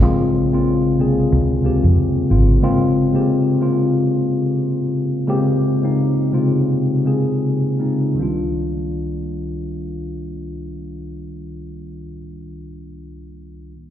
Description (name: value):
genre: R&B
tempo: 78-92 BPM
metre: 4/4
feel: swing 58% on 16ths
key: C minor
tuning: A4 = 441 Hz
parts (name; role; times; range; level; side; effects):
- mellow tine electric piano; accompaniment; 0.0-13.8 s; C2 to Ab4; -18 LUFS; left 1 dB; slow stereo tremolo, slapback echo
- vintage muted fingered electric bass; bass; 0.0-2.6 s; Ab1 to F2; -16 LUFS; equal; none
room: light reverb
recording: live gig heard through the venue's PA, recital hall reverb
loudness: -16 LUFS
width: side -10 dB against mid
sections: 0.0-8.2 A section; 8.2-11.2 B section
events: slowing down 2.6-8.2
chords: 0.0 Bbm9; 8.2 Cm11